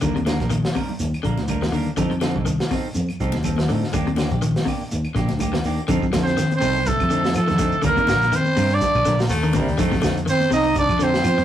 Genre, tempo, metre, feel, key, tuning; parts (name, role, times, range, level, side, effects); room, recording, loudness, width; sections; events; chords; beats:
afrobeat; 123 BPM; 4/4; swing 56% on 16ths; F mixolydian; A4 = 440 Hz
electric guitar at the edge of break-up; arpeggios; 0.0-11.4 s; C3 to Eb3; -25 LUFS; left 3 dB; spring reverb
semi-hollow electric guitar; stabs; 0.0-11.3 s; F3 to Bb4; -30 LUFS; right 3 dB
fingered electric bass; bass; 0.0-11.4 s; Bb1 to F3; -24 LUFS; equal
crunchy breakbeat drum kit; drums; 0.0-11.4 s; hi-hat, kick drum, snare drum; -27 LUFS; equal
claves; percussion; 0.0-11.4 s; -41 LUFS; left 1 dB
congas; percussion; 0.0-11.4 s; -32 LUFS; equal
shekere; percussion; 0.0-11.4 s; -34 LUFS; right 2 dB
growling trumpet; melody; 6.2-11.4 s; A4 to Eb5; -21 LUFS; equal
mellow trombone; second line; 6.2-11.4 s; A3 to Eb4; -23 LUFS; right 3 dB; slapback echo
raspy baritone saxophone; second line; 9.3-10.2 s; G3 to A3; -27 LUFS; left 1 dB
wet small room reverb, RT60 0.6 s; rough rehearsal-room recording, warm saturation; -18 LUFS; side -11 dB against mid
0.0-5.9 A section; 5.9-11.4 B section
0.0 Ebmaj7; 2.0 F7; 3.9 Ebmaj7; 5.9 F7; 7.8 Ebmaj7; 9.8 F7
| 0.03 0.52 1.01 1.50 | 1.98 2.47 2.96 3.45 | 3.94 4.43 4.91 5.40 | 5.89 6.38 6.86 7.35 | 7.84 8.32 8.81 9.30 | 9.78 10.27 10.76 11.24